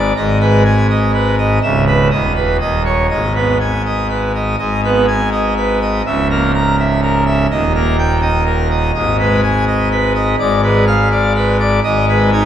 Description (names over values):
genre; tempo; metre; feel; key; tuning
classical, organ toccata; 124 BPM; 3/4; straight; G# minor; A4 = 440 Hz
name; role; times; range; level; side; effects
pipe organ, full organ; solo; 0.0-12.5 s; C#1 to A#5; -12 LUFS; equal; none
room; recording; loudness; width
wet church reverb, RT60 2.7 s; minimal, uncompressed stereo recording, vinyl crackle; -12 LUFS; side -10 dB against mid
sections
0.0-4.6 A section; 4.6-12.5 A section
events
none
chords
0.2 G#m; 1.6 C#m7; 2.1 B/D#; 2.6 C#sus2/D#; 3.1 G#m; 6.1 A#dim/C#; 7.5 D#; 9.0 G#m; 10.4 G#dim7; 11.8 G#m